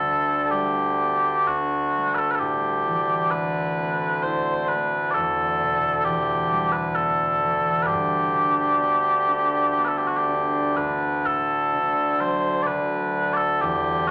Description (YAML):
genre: celtic folk, Celtic slow air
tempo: 59-67 BPM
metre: 3/4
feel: rubato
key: unclear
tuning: A4 = 440 Hz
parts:
  - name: mellow small bagpipes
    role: melody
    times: 0.0-14.1 s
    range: D2 to D5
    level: -23 LUFS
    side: equal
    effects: none
  - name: concert harp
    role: accompaniment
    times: 0.0-14.1 s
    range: D2 to E4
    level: -34 LUFS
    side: equal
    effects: none
room: moderate large studio reverb, RT60 0.8 s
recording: none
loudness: -23 LUFS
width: mono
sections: 0.0-10.8 A section; 10.8-14.1 B section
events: none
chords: 0.0 Gadd9; 2.4 Am; 5.2 Em; 7.9 G; 10.8 D; 13.6 Em7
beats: 0.52 1.48 | 2.41 3.33 4.25 | 5.17 6.07 6.97 | 7.88 8.79 9.77 | 10.76 11.72 12.66 | 13.61